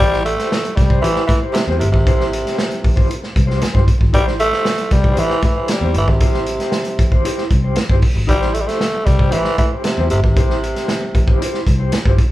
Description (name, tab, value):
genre	funk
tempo	116 BPM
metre	4/4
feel	straight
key	A minor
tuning	A4 = 440 Hz
part	growling tenor saxophone	melody	0.0-11.8 s	C3 to A3	-20 LUFS	right 1 dB	none
part	mellow electric guitar	accompaniment	0.0-12.2 s	E4 to C5	-24 LUFS	left 1 dB	tremolo
part	vintage muted picked electric bass	bass	0.0-12.2 s	G1 to A2	-19 LUFS	equal	none
part	vintage drum kit	drums	0.0-12.3 s	hi-hat, kick drum, snare drum	-16 LUFS	equal	none
room	light reverb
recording	band playing live in one room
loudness	-14 LUFS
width	side -16 dB against mid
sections	0.0-12.3 A section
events	none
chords	0.0 Am7